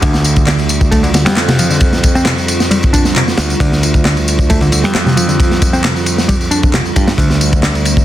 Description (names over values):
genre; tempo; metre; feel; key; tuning
breakbeat, breaks; 134 BPM; 4/4; straight; D minor; A4 = 439 Hz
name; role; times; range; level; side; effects
warbly tape-like pad; sustained chords; 0.0-8.0 s; D3 to F4; -20 LUFS; right 4 dB; chorus, built-in reverb, phaser, sidechain pumping
picked electric bass; riff; 0.0-7.7 s; C3 to D4; -16 LUFS; equal; tube saturation, digital delay
modern bright picked electric bass; bass; 0.0-8.0 s; D2 to G2; -17 LUFS; equal; none
crunchy breakbeat drum kit; drums; 0.0-8.0 s; kick drum, ride cymbal, snare drum; -14 LUFS; equal; none
electronic tambourine and handclaps; drums; 0.0-8.0 s; none; -20 LUFS; left 1 dB; none
room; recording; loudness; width
light reverb; dense, heavily limited modern master; -10 LUFS; side -13 dB against mid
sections
0.0-8.0 A section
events
none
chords
0.0 Dm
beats
| 0.02 0.47 0.92 1.36 | 1.81 2.26 2.71 3.16 | 3.60 4.05 4.50 4.95 | 5.39 5.84 6.29 6.74 | 7.19 7.63